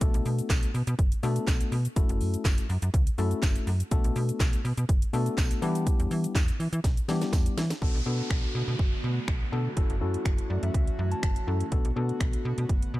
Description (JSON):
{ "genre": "dance-pop", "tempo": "123 BPM", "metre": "4/4", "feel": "straight", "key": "B minor", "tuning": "A4 = 438 Hz", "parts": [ { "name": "barky tine electric piano", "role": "accompaniment", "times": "0.0-12.6 s", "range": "G3 to A5", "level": "-33 LUFS", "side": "left 4 dB", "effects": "sidechain pumping" }, { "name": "slap-like FM bass", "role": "bass", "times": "0.0-13.0 s", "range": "F#1 to E3", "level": "-29 LUFS", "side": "equal", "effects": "sidechain pumping" }, { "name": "house drum kit", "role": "drums", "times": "0.0-12.9 s", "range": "finger snaps, handclaps, hi-hat, kick drum, shaker, snare drum", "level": "-26 LUFS", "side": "equal", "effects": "none" }, { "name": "tambourine", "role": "percussion", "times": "0.5-7.5 s", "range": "none", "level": "-45 LUFS", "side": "right 7 dB", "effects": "none" }, { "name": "airy breathy pad", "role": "sustained chords", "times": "8.3-13.0 s", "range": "D3 to F#4", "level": "-37 LUFS", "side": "right 2 dB", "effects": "chorus, sidechain pumping" }, { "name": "downlifter", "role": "sound effects", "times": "7.8-11.7 s", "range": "none", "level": "-40 LUFS", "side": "right 1 dB", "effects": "none" } ], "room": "digital ambience", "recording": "dark, warm production", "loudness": "-25 LUFS", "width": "side -17 dB against mid", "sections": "0.0-7.8 A section; 7.8-13.0 B section", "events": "drum fill 6.8-7.8; tine electric piano fill 10.3-11.7", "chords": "0.0 Bm7; 2.0 F#m7; 3.9 Bm7; 5.6 Em7; 7.8 Bm7; 9.8 F#m7; 11.7 Bm7" }